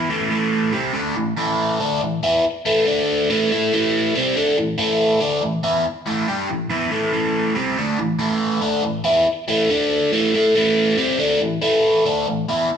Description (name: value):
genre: rock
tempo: 141 BPM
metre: 4/4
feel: straight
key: A minor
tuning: A4 = 439 Hz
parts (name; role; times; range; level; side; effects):
- biting overdriven guitar; solo; 0.0-12.7 s; A2 to A4; -17 LUFS; equal; phaser
room: wet large studio reverb, RT60 1.2 s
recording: band playing live in one room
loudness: -17 LUFS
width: side -8 dB against mid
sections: 0.0-10.6 A section; 10.6-12.8 A section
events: none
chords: 0.0 Am; 2.9 D5; 3.3 Am; 9.7 D5; 10.1 A5; 10.6 Am